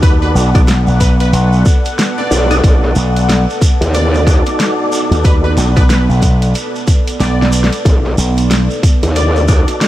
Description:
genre	glitch hop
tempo	92 BPM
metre	4/4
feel	swing 60% on 16ths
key	B minor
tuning	A4 = 440 Hz
part	plucky unison lead	melody	0.0-9.5 s	B4 to D5	-23 LUFS	left 1 dB	lush chorus, tape echo
part	dark analog pad	sustained chords	0.0-9.9 s	B3 to F#5	-20 LUFS	right 1 dB	chorus, sidechain pumping
part	percussive tonewheel organ	stabs	0.0-9.9 s	D#4 to D#5	-21 LUFS	left 1 dB	chorus vibrato, fast rotary speaker, sidechain pumping, tape echo
part	slap bass with an envelope filter	bass	0.0-8.7 s	B1 to D#2	-12 LUFS	equal	none
part	electronic kick drum	drums	0.0-9.6 s	none	-11 LUFS	equal	none
part	pop drum kit	drums	0.0-9.9 s	hi-hat, snare drum	-20 LUFS	equal	none
part	shekere	percussion	0.0-9.9 s	none	-26 LUFS	right 3 dB	none
part	growl bass	bass	2.3-9.7 s	B1 to D#2	-12 LUFS	equal	chorus, tube saturation
room	light reverb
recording	vinyl crackle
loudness	-10 LUFS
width	side -14 dB against mid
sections	0.0-9.9 A section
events	kick drops out 7.2-7.9; drum fill 7.2-7.9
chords	0.0 B7#9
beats	| 0.03 0.68 1.33 1.99 | 2.64 3.29 3.94 4.59 | 5.25 5.90 6.55 7.20 | 7.86 8.51 9.16 9.81

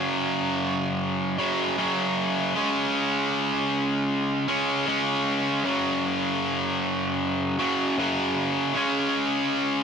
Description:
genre	rock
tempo	77 BPM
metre	4/4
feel	straight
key	unclear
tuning	A4 = 440 Hz
part	distorted electric guitar	solo	0.0-9.8 s	F#2 to C#4	-23 LUFS	equal	overdrive, tape echo
room	moderate lush hall reverb, RT60 2.3 s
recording	none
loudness	-23 LUFS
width	side -6 dB against mid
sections	0.0-9.8 A section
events	none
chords	0.0 F#5; 2.6 C#5; 5.7 F#5; 8.8 C#5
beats	0.23 1.00 1.78 | 2.55 3.33 4.11 4.88 | 5.66 6.43 7.21 7.99 | 8.76 9.54

